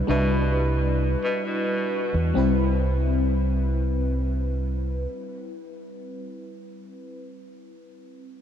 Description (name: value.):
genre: vaporwave.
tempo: 66 BPM.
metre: 4/4.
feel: straight.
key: C major.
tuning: A4 = 440 Hz.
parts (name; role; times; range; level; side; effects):
mellow FM electric piano; accompaniment; 0.0-8.4 s; G3 to B4; -27 LUFS; left 1 dB; phaser, lush chorus, tape echo.
bright tenor saxophone; melody; 0.1-2.1 s; B2; -31 LUFS; right 1 dB; vintage 12-bit sampler grit, tape echo.
deep dub fingered electric bass; bass; 0.1-5.1 s; C2 to E2; -23 LUFS; equal; tube saturation.
room: wet huge ambient reverb, RT60 7.3 s.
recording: dreamy mix soaked in reverb, cassette tape.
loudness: -22 LUFS.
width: side -9 dB against mid.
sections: 0.0-2.4 A section; 2.4-6.0 B section.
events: none.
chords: 0.0 Em7/C; 2.4 Cmaj7.